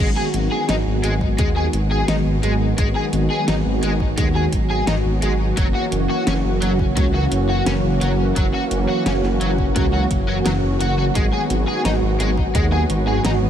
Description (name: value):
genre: synthwave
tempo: 86 BPM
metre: 4/4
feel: straight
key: G# minor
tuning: A4 = 440 Hz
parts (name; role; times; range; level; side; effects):
- warm analog pad; sustained chords; 0.0-13.5 s; D#3 to F#4; -22 LUFS; right 1 dB; chorus, sidechain pumping
- overdriven electric guitar; riff; 0.0-13.3 s; F#3 to G#4; -25 LUFS; left 1 dB; ensemble chorus, ping-pong delay
- dark detuned saw bass; bass; 0.0-13.5 s; F#1 to D#2; -21 LUFS; equal; sidechain pumping
- pop drum kit; drums; 0.3-13.4 s; hi-hat, snare drum; -28 LUFS; equal; small room ambience
- electronic kick drum; drums; 1.2-12.7 s; none; -21 LUFS; equal; small room ambience
room: moderate huge ambient reverb, RT60 7.9 s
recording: dreamy mix soaked in reverb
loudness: -17 LUFS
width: side -9 dB against mid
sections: 0.0-13.5 A section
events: none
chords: 0.0 G#m7; 5.6 F#7; 11.2 G#m7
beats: 0.69 1.39 2.08 | 2.78 3.48 4.18 4.88 | 5.57 6.27 6.97 7.67 | 8.36 9.06 9.76 10.46 | 11.15 11.85 12.55 13.25